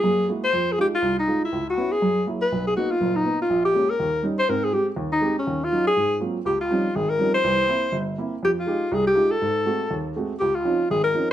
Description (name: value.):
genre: jazz.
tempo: 243 BPM.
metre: 4/4.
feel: swing 59% on 8ths.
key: Ab major.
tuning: A4 = 440 Hz.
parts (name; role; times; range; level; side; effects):
mellow alto saxophone; melody; 0.0-11.3 s; Db4 to C5; -21 LUFS; left 1 dB; none.
dark baby grand piano; accompaniment; 0.0-11.3 s; F#1 to G4; -26 LUFS; right 3 dB; none.
room: moderate studio reverb, RT60 0.8 s.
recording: none.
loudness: -20 LUFS.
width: side -11 dB against mid.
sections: 0.0-6.5 A section; 6.5-11.3 B section.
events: none.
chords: 0.0 Gb9; 0.5 Fm7; 1.5 Dbm7; 2.0 Gb7; 2.5 Bmaj7; 3.5 Bbm7; 4.0 Eb7; 4.5 Abmaj7; 5.5 Ebm7; 6.0 Ab13; 6.5 Dbmaj9#11; 7.4 C7; 8.4 Fm9; 9.4 Ab7b9; 10.4 Dbmaj9.